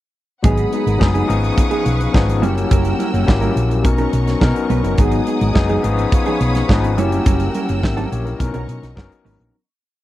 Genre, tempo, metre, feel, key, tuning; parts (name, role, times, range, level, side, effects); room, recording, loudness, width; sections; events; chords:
disco; 106 BPM; 4/4; straight; A4 = 440 Hz
mellow electric guitar; accompaniment; 0.4-9.6 s; E#3 to C#5; -23 LUFS; right 5 dB; analog chorus
overdriven tine electric piano; accompaniment; 0.4-9.6 s; D#3 to E5; -21 LUFS; left 5 dB; medium tremolo
clear studio string section; sustained chords; 0.4-9.5 s; B3 to E6; -27 LUFS; equal
hollow-body short-scale fingered electric bass; bass; 0.4-9.5 s; F#1 to B2; -19 LUFS; equal
modern studio drum kit; drums; 0.4-9.5 s; hi-hat, kick drum, snare drum; -17 LUFS; equal
little or no reverb; dry, close 1970s-style studio recording; -14 LUFS; side -14 dB against mid
0.4-9.5 verse
fade-out 7.3-9.5
0.4 G#m7; 1.3 C#9/G#; 2.4 F#7b9; 3.8 Bmaj9; 5.0 G#m7; 5.8 C#9/G#; 7.0 F#7b9; 8.4 Bmaj9